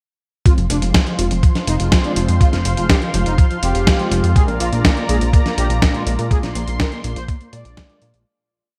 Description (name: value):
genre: italo disco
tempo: 123 BPM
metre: 4/4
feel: straight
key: F dorian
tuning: A4 = 440 Hz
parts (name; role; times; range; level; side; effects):
- analog synth brass; melody; 0.5-8.2 s; F3 to D5; -28 LUFS; equal; chorus, digital delay
- lush unison pad; sustained chords; 0.5-8.2 s; F4 to C6; -29 LUFS; equal; chorus
- mellow synth brass; stabs; 0.5-8.2 s; Bb2 to F4; -29 LUFS; equal; chorus, vintage 12-bit sampler grit
- dusty soul sampler-style drum kit; drums; 0.5-8.2 s; hi-hat, snare drum; -23 LUFS; equal; gated reverb
- electronic kick drum; drums; 0.5-7.9 s; none; -16 LUFS; equal; none
- chorused synth bass; bass; 0.6-8.2 s; F1 to Bb2; -21 LUFS; equal; tube saturation
room: light reverb, digital ambience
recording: bright 1980s-style digital production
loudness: -17 LUFS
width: mono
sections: 0.5-8.3 verse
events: fade-out 5.7-8.3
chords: 0.5 Fm; 4.4 Bb7